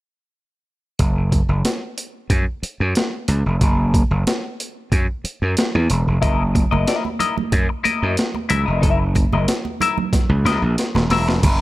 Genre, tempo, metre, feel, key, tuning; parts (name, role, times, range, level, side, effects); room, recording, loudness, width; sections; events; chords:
funk; 92 BPM; 4/4; straight; F# mixolydian; A4 = 440 Hz
gritty slap bass; bass; 1.0-11.6 s; D#1 to F#2; -18 LUFS; equal; overdrive
breakbeat sampler-style drum kit; drums; 1.0-11.6 s; crash cymbal, hi-hat, kick drum, snare drum; -20 LUFS; equal; overdrive
clean electric guitar; accompaniment; 6.2-11.3 s; E4 to E5; -22 LUFS; left 6 dB; wah
congas; percussion; 6.6-11.3 s; -27 LUFS; right 5 dB
little or no reverb; -17 LUFS; side -17 dB against mid
1.0-11.4 A section
drum fill 10.1-11.4
1.0 F#6